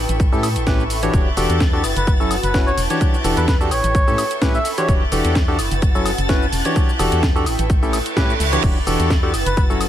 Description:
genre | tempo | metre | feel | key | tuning
piano house | 128 BPM | 4/4 | swing 54% on 16ths | E dorian | A4 = 439 Hz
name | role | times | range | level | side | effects
clear studio violin section | sustained chords | 0.0-9.9 s | A4 to A6 | -28 LUFS | left 1 dB | sidechain pumping
organ-like FM bass | bass | 0.0-9.9 s | E1 to A2 | -22 LUFS | equal | sidechain pumping
airy breathy pad | texture | 0.0-9.9 s | C#4 to C#6 | -27 LUFS | equal | chorus, sidechain pumping
house drum kit | drums | 0.1-9.9 s | crash cymbal, hi-hat, shaker, snare drum, woodblock | -25 LUFS | equal | overdrive
electronic kick drum | drums | 0.2-9.7 s | none | -18 LUFS | equal | overdrive
percussive organ stab | riff | 0.3-9.9 s | A2 to C#5 | -22 LUFS | left 1 dB | chorus, sidechain pumping, digital delay
trumpet with cup mute | melody | 2.0-4.9, 9.5-9.6 s | B4 to E5 | -24 LUFS | equal | digital delay
reverse cymbal | sound effects | 7.9-8.6 s | none | -25 LUFS | right 6 dB | none
room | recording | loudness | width
little or no reverb | none | -15 LUFS | side -11 dB against mid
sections
0.0-9.9 A section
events
reverse cymbal 7.9-8.6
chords
0.0 A7; 1.1 Em11; 1.8 F#m7; 2.8 Em11; 3.7 A7; 4.9 Em11; 5.6 F#m7; 6.5 Em11; 7.5 A7; 8.6 Em11; 9.3 F#m7

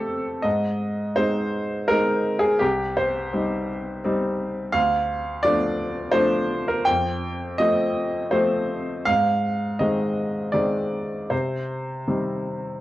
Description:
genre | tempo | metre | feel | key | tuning
neoclassical minimalist piano | 83 BPM | 3/4 | uneven beats, rubato | unclear | A4 = 440 Hz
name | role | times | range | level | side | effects
bright upright piano | solo | 0.0-12.8 s | C2 to G5 | -21 LUFS | equal | cassette tape
room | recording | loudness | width
wet small room reverb, RT60 0.6 s | home recording on cassette | -21 LUFS | side -15 dB against mid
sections
0.0-12.8 A section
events
none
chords
0.4 Ab; 2.6 Cm; 4.7 Dm; 6.9 Fadd9; 9.1 Ab; 11.3 Cm

